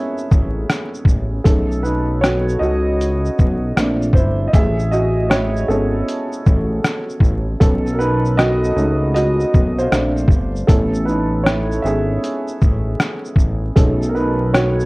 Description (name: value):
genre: lo-fi hip hop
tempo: 78 BPM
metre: 4/4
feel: swing 66% on 16ths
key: A lydian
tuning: A4 = 440 Hz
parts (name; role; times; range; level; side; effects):
- dark upright piano; accompaniment; 0.0-14.9 s; G#3 to E5; -19 LUFS; right 1 dB; low-pass filter, plate reverb
- trip hop sampler-style drum kit; drums; 0.2-14.9 s; hi-hat, kick drum, rim click, shaker; -15 LUFS; equal; none
- fat analog bass; bass; 0.3-14.9 s; G1 to C#2; -19 LUFS; equal; none
room: light reverb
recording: worn, warbling old tape, cassette tape, vinyl crackle, warbly pitch drift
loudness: -15 LUFS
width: side -24 dB against mid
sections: 0.0-14.9 A section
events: upright piano solo 0.0-14.9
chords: 0.0 Amaj9; 1.5 B13; 3.8 Bbmaj9; 4.5 Amaj9; 7.6 B13; 9.9 Bbmaj9; 10.7 Amaj9; 13.8 B13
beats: 0.69 | 1.45 2.22 2.99 3.76 | 4.53 5.30 6.07 6.84 | 7.61 8.38 9.15 9.91 | 10.69 11.45 12.22 12.99 | 13.76 14.53